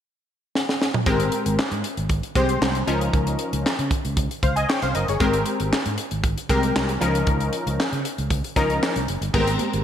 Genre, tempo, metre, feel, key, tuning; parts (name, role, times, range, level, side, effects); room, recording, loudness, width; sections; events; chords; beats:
early-eighties boogie funk; 116 BPM; 4/4; straight; A4 = 440 Hz
tight funk drum kit; drums; 0.6-9.8 s; crash cymbal, handclaps, hi-hat, kick drum, snare drum, toms; -24 LUFS; equal
funky polysynth comp; accompaniment; 1.1-9.8 s; F3 to Ab5; -23 LUFS; left 2 dB; chorus
fretless electric bass; bass; 1.1-9.8 s; Gb1 to Db3; -25 LUFS; right 1 dB; lush chorus
congas; percussion; 9.3-9.7 s; -31 LUFS; right 5 dB
moderate lush hall reverb, RT60 2.1 s; bright 1980s-style digital production; -20 LUFS; side -9 dB against mid
0.0-1.1 A section; 1.1-9.3 B section
drum fill 0.5-1.1
0.0 N.C.; 1.1 Abmaj9; 2.9 Db69; 5.2 Abmaj9; 7.0 Db69
0.03 0.55 | 1.06 1.58 2.10 2.62 | 3.13 3.65 4.17 4.68 | 5.20 5.72 6.24 6.75 | 7.27 7.79 8.31 8.82 | 9.34